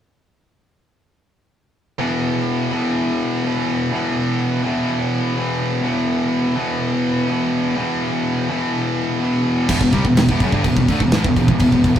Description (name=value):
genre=heavy metal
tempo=125 BPM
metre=4/4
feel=straight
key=unclear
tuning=A4 = 442 Hz
part: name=scooped high-gain guitar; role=riff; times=2.0-12.0 s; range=E2 to A3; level=-21 LUFS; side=right 4 dB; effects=distortion
part: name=tight distorted guitar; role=riff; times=2.0-12.0 s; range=E2 to A3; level=-19 LUFS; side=left 3 dB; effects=distortion
part: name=fuzz picked electric bass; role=bass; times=9.7-12.0 s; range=E1 to D2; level=-22 LUFS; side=equal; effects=overdrive
part: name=modern studio drum kit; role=drums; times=9.7-12.0 s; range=crash cymbal, kick drum, snare drum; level=-18 LUFS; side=right 1 dB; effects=none
room=moderate studio ambience, RT60 0.5 s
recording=rough rehearsal-room recording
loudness=-16 LUFS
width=side -10 dB against mid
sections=2.0-9.7 A section; 9.7-12.0 B section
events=none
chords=2.0 E5; 9.7 Em